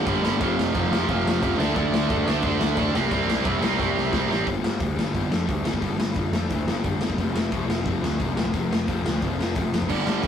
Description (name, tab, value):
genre	punk rock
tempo	177 BPM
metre	4/4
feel	straight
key	unclear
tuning	A4 = 441 Hz
part	crunchy overdriven guitar	riff	0.0-10.3 s	F2 to D4	-29 LUFS	left 6 dB	none
part	distorted electric guitar	riff	0.0-4.5, 9.9-10.3 s	F2 to D4	-24 LUFS	right 5 dB	overdrive
part	fuzz picked electric bass	bass	0.1-10.3 s	F1 to F2	-28 LUFS	equal	overdrive
part	raw garage drum kit	drums	0.1-10.3 s	crash cymbal, hi-hat, kick drum, snare drum	-26 LUFS	left 1 dB	none
room	moderate studio reverb, RT60 0.6 s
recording	rough rehearsal-room recording, warm saturation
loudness	-21 LUFS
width	side -8 dB against mid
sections	0.0-4.5 A section; 4.5-10.3 B section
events	drum fill 3.8-4.5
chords	0.4 F5; 1.6 D5; 2.9 C5; 4.5 G5; 7.2 F5